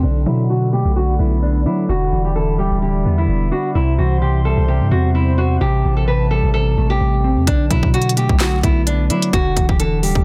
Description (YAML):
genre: hip hop, trap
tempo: 129 BPM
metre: 4/4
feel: half-time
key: B phrygian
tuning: A4 = 440 Hz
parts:
  - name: nylon-string guitar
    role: melody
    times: 0.0-10.2 s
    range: D4 to B4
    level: -24 LUFS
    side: equal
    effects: low-pass filter, tape echo
  - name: mellow electric guitar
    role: accompaniment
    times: 0.0-10.2 s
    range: C3 to C5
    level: -23 LUFS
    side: equal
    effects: low-pass filter
  - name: hollow soft pad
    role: sustained chords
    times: 0.0-7.5 s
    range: G3 to C6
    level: -33 LUFS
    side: equal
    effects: chorus, low-pass filter
  - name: long sustained 808-style bass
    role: bass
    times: 0.0-10.2 s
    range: D1 to F#3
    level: -20 LUFS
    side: equal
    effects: none
  - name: trap drum kit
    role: drums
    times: 7.5-10.2 s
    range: handclaps, hi-hat, kick drum, snare drum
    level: -20 LUFS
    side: equal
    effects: none
room: little or no reverb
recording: dense, heavily limited modern master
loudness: -17 LUFS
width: mono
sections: 0.0-7.5 A section; 7.5-10.2 B section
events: filter sweep 0.0-7.5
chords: 0.0 Bm7; 1.9 Em7; 3.8 C; 5.6 Am7; 7.5 Bm7; 9.3 Em7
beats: | 0.03 0.50 0.96 1.43 | 1.89 2.36 2.82 3.29 | 3.75 4.22 4.68 5.15 | 5.61 6.08 6.54 7.01 | 7.47 7.94 8.40 8.87 | 9.33 9.80